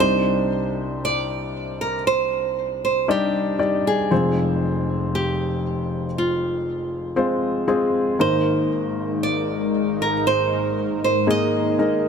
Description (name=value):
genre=pop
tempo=59 BPM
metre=4/4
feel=straight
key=C minor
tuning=A4 = 440 Hz
part: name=nylon-string guitar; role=melody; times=0.0-12.0 s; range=F4 to Eb5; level=-23 LUFS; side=right 4 dB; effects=none
part: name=warm upright piano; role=accompaniment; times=0.0-12.1 s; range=F1 to D5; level=-22 LUFS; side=left 2 dB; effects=none
part: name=sweeping resonant pad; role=sustained chords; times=8.2-12.1 s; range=Ab2 to Bb4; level=-24 LUFS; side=left 2 dB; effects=chorus
room=moderate plate reverb, RT60 3.7 s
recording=none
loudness=-19 LUFS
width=side -6 dB against mid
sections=0.0-12.1 A section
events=none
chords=0.0 Cmadd9; 4.1 Fm; 8.2 Absus2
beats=1.03 2.06 3.09 | 4.11 5.13 6.16 7.17 | 8.19 9.21 10.24 11.27